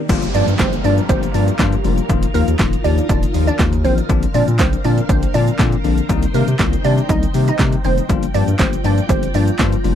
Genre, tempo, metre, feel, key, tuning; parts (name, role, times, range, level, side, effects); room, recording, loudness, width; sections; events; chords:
dance-pop; 120 BPM; 4/4; straight; G minor; A4 = 438 Hz
bell-like tine electric piano; accompaniment; 0.0-9.9 s; D3 to G4; -21 LUFS; left 15 dB; sidechain pumping
ensemble organ-string; sustained chords; 0.0-9.9 s; D4 to G5; -28 LUFS; right 1 dB; phaser, ensemble chorus, sidechain pumping
saturated sub bass; bass; 0.1-9.9 s; Eb1 to C3; -18 LUFS; equal; sidechain pumping
punchy analog drum machine; drums; 0.1-9.9 s; crash cymbal, handclaps, hi-hat, kick drum, shaker, snare drum; -18 LUFS; equal; overdrive
downlifter; sound effects; 0.1-4.1 s; -28 LUFS; right 2 dB
glassy wavetable pluck; melody; 0.3-9.5 s; Bb3 to Eb5; -22 LUFS; right 4 dB; chorus, sidechain pumping, tape echo
little or no reverb; dry, close 1970s-style studio recording; -14 LUFS; side -10 dB against mid
0.1-9.9 A section
drop 0.1-9.9
0.1 Gm7; 2.1 Ebsus2; 4.1 Bbadd9; 6.1 Cm7; 8.1 Gm7